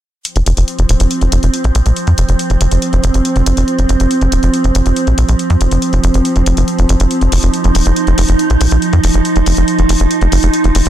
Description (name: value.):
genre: psychedelic trance.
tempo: 140 BPM.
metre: 4/4.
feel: straight.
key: unclear.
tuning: A4 = 440 Hz.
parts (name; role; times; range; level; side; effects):
evolving wavetable pad; sustained chords; 0.6-10.9 s; F3 to Eb4; -15 LUFS; right 3 dB; chorus, built-in reverb.
electronic hi-hat; drums; 0.2-10.9 s; none; -22 LUFS; left 3 dB; none.
tight sequencer bass; bass; 0.4-10.9 s; Eb1 to F2; -11 LUFS; equal; none.
room: little or no reverb.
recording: dense, heavily limited modern master.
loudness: -10 LUFS.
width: side -12 dB against mid.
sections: 0.2-10.9 A section.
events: none.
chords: 0.2 F5.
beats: | 0.25 0.68 1.11 1.54 | 1.96 2.39 2.82 3.25 | 3.68 4.11 4.54 4.96 | 5.39 5.82 6.25 6.68 | 7.11 7.54 7.96 8.39 | 8.82 9.25 9.68 10.11 | 10.54.